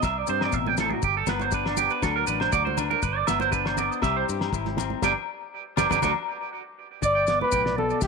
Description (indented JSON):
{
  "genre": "highlife guitar band",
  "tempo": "120 BPM",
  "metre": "4/4",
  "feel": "straight",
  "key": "G major",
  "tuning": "A4 = 440 Hz",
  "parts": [
    { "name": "semi-hollow electric guitar", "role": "accompaniment", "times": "0.0-8.1 s", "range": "G2 to G4", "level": "-32 LUFS", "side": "left 17 dB", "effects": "none" },
    { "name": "clean electric guitar", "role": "arpeggios", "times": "0.0-8.1 s", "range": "D4 to D6", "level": "-26 LUFS", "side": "right 12 dB", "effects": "tape echo" },
    { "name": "fingered electric bass", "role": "bass", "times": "0.0-8.1 s", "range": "G1 to G2", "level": "-32 LUFS", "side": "left 1 dB", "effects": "none" },
    { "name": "cloth-damped thuddy drum kit", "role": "drums", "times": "0.0-8.1 s", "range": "kick drum, snare drum", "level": "-30 LUFS", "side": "left 1 dB", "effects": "none" },
    { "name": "agogo bells", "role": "percussion", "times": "0.0-6.1 s", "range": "none", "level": "-32 LUFS", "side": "left 16 dB", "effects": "none" },
    { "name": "maracas", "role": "percussion", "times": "0.0-8.1 s", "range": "none", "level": "-36 LUFS", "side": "left 17 dB", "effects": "none" },
    { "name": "congas", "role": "percussion", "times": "0.7-7.9 s", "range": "none", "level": "-34 LUFS", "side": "right 13 dB", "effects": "none" },
    { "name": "trumpet with bucket mute", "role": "melody", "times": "7.0-8.1 s", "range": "G4 to D5", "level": "-22 LUFS", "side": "left 1 dB", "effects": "none" }
  ],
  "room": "moderate spring reverb, RT60 2.5 s",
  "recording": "1960s-style stereo with parts hard left and right",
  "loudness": "-22 LUFS",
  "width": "side -4 dB against mid",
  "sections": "0.0-7.0 A section; 7.0-8.1 B section",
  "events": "clean electric guitar solo 0.0-7.0; band accent 5.0-7.0",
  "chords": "0.0 C5; 1.0 G; 2.0 D; 3.0 G; 4.0 C; 5.0 G; 6.0 D; 7.0 G"
}